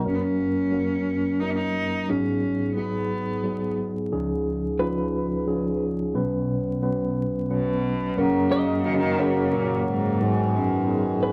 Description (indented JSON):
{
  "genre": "acoustic folk-pop ballad",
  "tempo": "89 BPM",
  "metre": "3/4",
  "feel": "straight",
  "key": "F# major",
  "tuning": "A4 = 445 Hz",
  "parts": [
    { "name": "mellow tine electric piano", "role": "accompaniment", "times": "0.0-11.3 s", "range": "F#1 to B4", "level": "-27 LUFS", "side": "equal", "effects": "none" },
    { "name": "hand-pumped harmonium", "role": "sustained chords", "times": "0.0, 8.2-11.3 s", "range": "C#3 to A#4", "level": "-30 LUFS", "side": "equal", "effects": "none" },
    { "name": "clear cello", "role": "melody", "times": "0.1-3.7, 7.5-11.2 s", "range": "F#2 to D#4", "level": "-28 LUFS", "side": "equal", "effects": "none" },
    { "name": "clean electric guitar", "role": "arpeggios", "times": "4.8-11.3 s", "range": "B4 to D#5", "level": "-32 LUFS", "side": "equal", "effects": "tremolo" }
  ],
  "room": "wet small room reverb, RT60 0.5 s",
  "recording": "vinyl crackle",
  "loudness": "-25 LUFS",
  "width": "mono",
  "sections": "0.1-8.2 A section; 8.2-11.3 B section",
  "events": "none",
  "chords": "0.1 F#; 2.1 G#m7; 4.1 C#add9; 6.1 Bsus2; 8.2 F#; 10.2 G#m7"
}